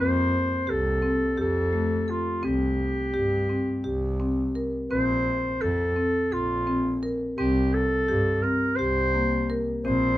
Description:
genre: contemporary instrumental, chamber music in an uneven meter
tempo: 170 BPM (eighths)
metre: 7/8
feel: straight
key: unclear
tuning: A4 = 441 Hz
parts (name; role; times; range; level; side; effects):
- warm clarinet; melody; 0.0-10.2 s; F4 to C5; -26 LUFS; equal; none
- marimba with medium mallets; arpeggios; 0.0-10.2 s; A3 to Bb4; -26 LUFS; left 1 dB; none
- rich double bass; bass; 0.0-10.2 s; Bb1 to G2; -29 LUFS; right 1 dB; none
room: moderate studio reverb, RT60 0.7 s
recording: none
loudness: -23 LUFS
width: side -14 dB against mid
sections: 0.0-4.9 A section; 4.9-10.2 B section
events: none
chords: 0.0 Fadd9; 2.4 C5; 4.9 Bbsus2; 7.4 C5

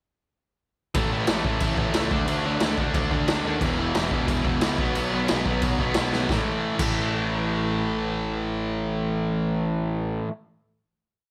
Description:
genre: punk rock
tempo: 180 BPM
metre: 4/4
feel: straight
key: unclear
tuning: A4 = 440 Hz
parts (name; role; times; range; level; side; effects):
- distorted electric guitar; riff; 0.9-10.3 s; E2 to D4; -30 LUFS; equal; overdrive
- fuzz picked electric bass; bass; 0.9-10.2 s; E1 to D#2; -32 LUFS; equal; overdrive
- raw garage drum kit; drums; 0.9-6.9 s; crash cymbal, kick drum, snare drum; -28 LUFS; equal; none
- sludgy distorted guitar; riff; 1.0-10.3 s; E2 to D4; -31 LUFS; equal; overdrive
room: little or no reverb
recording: none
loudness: -25 LUFS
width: mono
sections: 1.0-6.3 riff; 6.3-9.0 final chord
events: drum fill 6.1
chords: 1.0 A; 2.1 D5; 3.6 E5; 4.8 B5; 6.3 A5

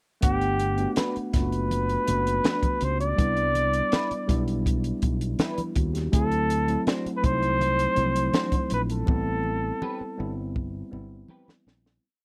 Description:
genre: lush 1970s-style soul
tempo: 81 BPM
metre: 4/4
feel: straight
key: A dorian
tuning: A4 = 440 Hz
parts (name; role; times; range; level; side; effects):
- clear flugelhorn; melody; 0.2-10.3 s; G4 to D5; -29 LUFS; equal; none
- tine electric piano; accompaniment; 0.2-12.1 s; F3 to F#5; -32 LUFS; equal; none
- fingered electric bass; bass; 0.2-12.0 s; F#1 to D#2; -31 LUFS; equal; none
- compact cocktail drum kit; drums; 0.2-12.0 s; hi-hat, kick drum, snare drum; -28 LUFS; equal; none
- congas; percussion; 0.2-11.7 s; none; -37 LUFS; equal; none
- electric guitar through a small old amp; riff; 1.0-11.5 s; C4 to C5; -35 LUFS; equal; ensemble chorus
room: small room ambience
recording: dry, close 1970s-style studio recording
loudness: -25 LUFS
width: mono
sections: 0.2-12.0 A section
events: fade-out 9.1-12.0; drum fill 9.1-12.0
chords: 0.2 Gmaj7; 3.2 Cmaj9; 6.1 D7; 9.1 Am9

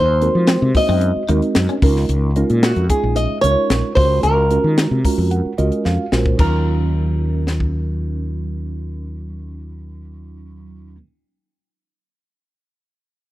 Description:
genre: electric jazz fusion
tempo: 112 BPM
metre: 4/4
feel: straight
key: Eb dorian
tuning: A4 = 441 Hz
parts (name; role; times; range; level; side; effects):
- flamenco guitar; melody; 0.0-11.0 s; Gb4 to Eb5; -19 LUFS; equal; slapback echo
- clean electric guitar; stabs; 0.0-1.9 s; C4 to Eb4; -25 LUFS; left 2 dB; ensemble chorus
- mellow fretless electric bass; bass; 0.0-11.0 s; Bb1 to F3; -19 LUFS; equal; none
- tine electric piano; accompaniment; 0.2-11.0 s; Gb3 to Bb5; -23 LUFS; right 4 dB; phaser
- crisp fusion drum kit; drums; 0.2-7.7 s; crash cymbal, hi-hat, kick drum, snare drum; -19 LUFS; left 1 dB; none
room: small room ambience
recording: dry, close 1970s-style studio recording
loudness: -15 LUFS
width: side -15 dB against mid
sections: 0.0-6.4 A section; 6.4-10.7 B section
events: tine electric piano fill 4.8-6.4; drum fill 5.9-6.4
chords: 0.0 Ab9/Eb; 1.8 Db6; 4.0 Gbmaj9/Db; 6.4 Ebm9

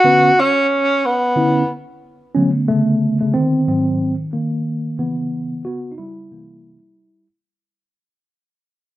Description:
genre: hip hop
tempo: 91 BPM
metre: 4/4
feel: swing 59% on 16ths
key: unclear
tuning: A4 = 438 Hz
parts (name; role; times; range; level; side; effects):
- warm tenor saxophone; melody; 0.0-1.7 s; B3 to F#4; -13 LUFS; equal; plate reverb
- mellow tine electric piano; accompaniment; 0.0-7.3 s; G#2 to B4; -17 LUFS; equal; medium stereo tremolo
room: wet studio reverb, RT60 0.6 s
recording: worn, warbling old tape, cassette tape, warbly pitch drift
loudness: -15 LUFS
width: side -15 dB against mid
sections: 0.0-2.4 A section; 2.4-7.6 B section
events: fade-out 2.4-7.6; tine electric piano solo 2.4-7.6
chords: 0.0 Bmadd9; 2.4 Bm9; 3.7 G#7; 5.0 C#m7b5; 6.3 C7

